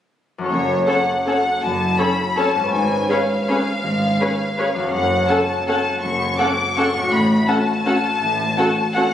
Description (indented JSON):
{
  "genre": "classical",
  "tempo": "163 BPM",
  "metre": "3/4",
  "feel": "uneven beats, rubato",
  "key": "F# minor",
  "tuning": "A4 = 436 Hz",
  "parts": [
    { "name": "concert harp", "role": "arpeggios", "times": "0.4-9.1 s", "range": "F#2 to C#5", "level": "-26 LUFS", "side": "left 2 dB", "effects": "none" },
    { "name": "rich studio violin section", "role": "melody", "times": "0.5-9.1 s", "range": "C#5 to D6", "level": "-21 LUFS", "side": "left 3 dB", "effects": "none" },
    { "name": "rich studio cello section", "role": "bass", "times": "0.5-8.5 s", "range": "F#2 to A2", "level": "-24 LUFS", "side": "right 1 dB", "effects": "none" },
    { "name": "rich studio double bass section", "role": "bass", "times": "0.5-8.5 s", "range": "F#1 to A1", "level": "-29 LUFS", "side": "right 1 dB", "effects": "none" },
    { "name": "dark studio violin section", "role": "second line", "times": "0.9-9.0 s", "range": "A4 to F#5", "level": "-24 LUFS", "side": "left 1 dB", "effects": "none" },
    { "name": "rich studio viola section", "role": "accompaniment", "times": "0.9-9.0 s", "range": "C#4 to A4", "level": "-24 LUFS", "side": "equal", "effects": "none" }
  ],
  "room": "wet concert hall reverb, RT60 2.1 s",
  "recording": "recorded on a phone in the room, studio reverb, compression",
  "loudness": "-16 LUFS",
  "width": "side -10 dB against mid",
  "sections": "0.5-9.1 A section",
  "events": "none",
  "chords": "0.5 F#m; 2.7 C#7/G#; 4.9 F#m; 7.1 F#m/A",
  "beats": "| 0.50 0.87 1.25 | 1.61 1.98 2.36 | 2.73 3.09 3.48 | 3.84 4.20 4.58 | 4.93 5.30 5.68 | 6.03 6.39 6.77 | 7.13 7.48 7.85 | 8.21 8.57 8.95"
}